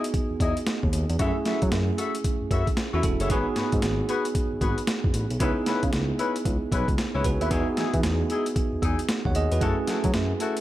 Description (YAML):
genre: R&B, new jack swing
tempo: 114 BPM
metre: 4/4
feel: swing 63% on 16ths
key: F# dorian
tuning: A4 = 440 Hz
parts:
  - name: bell-like tine electric piano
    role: accompaniment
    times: 0.0-10.6 s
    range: A3 to F#5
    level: -28 LUFS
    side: right 3 dB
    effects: fast stereo tremolo
  - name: mellow horn section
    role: stabs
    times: 0.0-10.6 s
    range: G#3 to E5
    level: -31 LUFS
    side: left 5 dB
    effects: tape echo
  - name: boom bap sampler-style drum kit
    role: drums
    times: 0.0-10.6 s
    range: hi-hat, kick drum, snare drum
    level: -27 LUFS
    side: equal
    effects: overdrive
  - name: smooth synth bass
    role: bass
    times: 0.3-10.3 s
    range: E1 to F#3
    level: -27 LUFS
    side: equal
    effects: none
room: light reverb, digital ambience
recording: none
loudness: -23 LUFS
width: side -14 dB against mid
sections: 0.0-10.6 A section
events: none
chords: 0.0 Emaj7; 1.2 F#m7; 3.3 G#m7; 5.4 C#m7; 7.5 Emaj7; 9.6 F#m7